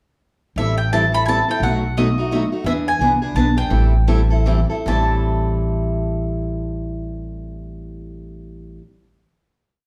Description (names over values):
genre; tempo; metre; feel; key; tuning
acoustic string swing (jazz manouche); 147-173 BPM; 3/4; swing 60% on 8ths; A minor; A4 = 440 Hz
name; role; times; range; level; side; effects
mandolin; melody; 0.6-8.8 s; D#5 to B5; -24 LUFS; equal; none
picked acoustic archtop guitar; accompaniment; 0.6-8.8 s; A2 to A4; -25 LUFS; equal; none
upright bass; bass; 0.6-8.8 s; A1 to E2; -23 LUFS; equal; none
room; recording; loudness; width
moderate large studio reverb, RT60 0.8 s; band playing live in one room; -19 LUFS; mono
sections
0.6-4.9 A section; 4.9-7.3 final chord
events
slowing down 2.7-4.9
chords
0.6 Am7; 1.6 B7; 2.7 E7; 3.7 Am7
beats
| 0.57 0.92 1.26 | 1.61 1.96 2.30 | 2.65 3.00 3.35 | 3.71 4.08 4.46 | 4.86 5.27 5.68 | 6.09 6.50 6.90